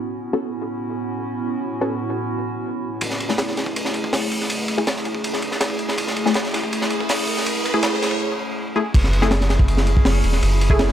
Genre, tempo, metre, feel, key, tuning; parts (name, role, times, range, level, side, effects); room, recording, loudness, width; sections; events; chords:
drum and bass, jungle; 162 BPM; 4/4; straight; F# minor; A4 = 440 Hz
warbly tape-like pad; sustained chords; 0.0-10.9 s; A2 to G#4; -25 LUFS; right 1 dB; chorus, built-in reverb
filtered dub chord stab; stabs; 0.0-10.9 s; A3 to A4; -25 LUFS; left 2 dB; chorus, cassette tape, dub echo
soft dub sub bass; bass; 3.0-10.9 s; E1 to F#1; -21 LUFS; equal; high-pass filter
crunchy breakbeat drum kit; drums; 3.0-10.9 s; crash cymbal, hi-hat, kick drum, ride cymbal, snare drum; -21 LUFS; equal; high-pass filter on kick, high-pass filter on cymbals, high-pass filter on hats, high-pass filter on snare, high-pass filter on room
riser; sound effects; 4.9-8.2 s; -30 LUFS; right 1 dB
light reverb, studio reverb; -19 LUFS; side -10 dB against mid
0.0-3.0 A section; 3.0-8.9 B section; 8.9-10.9 C section
build-up 3.0-8.9; filter sweep on synth stab 3.0-8.9; riser 4.9-8.2; break 8.2-8.9; drop 8.9-10.9
0.0 A69; 3.0 F#m9